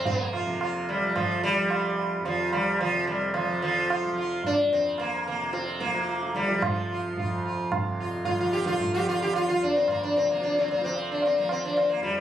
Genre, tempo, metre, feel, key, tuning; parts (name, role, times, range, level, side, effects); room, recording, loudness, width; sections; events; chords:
indian classical, Hindustani; 110 BPM; 4/4; straight; F raga durga; A4 = 442 Hz
sitar; melody; 0.0-12.2 s; F3 to G4; -25 LUFS; equal
tanpura; drone; 0.0-12.2 s; F2 to F3; -33 LUFS; right 1 dB
tabla; percussion; 0.1-12.2 s; -32 LUFS; right 4 dB
moderate studio reverb, RT60 0.6 s; recorded on a phone in the room, club reverb, compression; -24 LUFS; side -10 dB against mid
0.0-12.2 A section